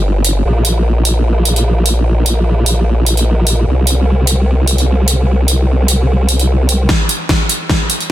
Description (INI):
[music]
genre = heavy wobble dubstep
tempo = 149 BPM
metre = 4/4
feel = swing 54% on 16ths, half-time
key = unclear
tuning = A4 = 437 Hz
[part]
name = formant-sweep wobble bass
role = bass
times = 0.0-6.9 s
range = G1 to C2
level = -11 LUFS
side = equal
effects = chorus, overdrive
[part]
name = dubstep drum kit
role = drums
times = 0.2-8.1 s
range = hi-hat, snare drum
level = -15 LUFS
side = right 1 dB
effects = overdrive
[part]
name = electronic kick drum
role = drums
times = 6.9-7.8 s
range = none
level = -16 LUFS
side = equal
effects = overdrive
[sound]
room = little or no reverb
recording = dense, heavily limited modern master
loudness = -11 LUFS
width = side -13 dB against mid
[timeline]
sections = 0.0-6.9 A section; 6.9-8.1 B section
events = build-up 6.9-8.1; drum fill 6.9-8.1; filter sweep 6.9-8.1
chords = none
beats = 0.04 | 0.45 0.85 1.25 1.66 | 2.06 2.46 2.86 3.27 | 3.67 4.07 4.47 4.88 | 5.28 5.68 6.08 6.49 | 6.89 7.29 7.70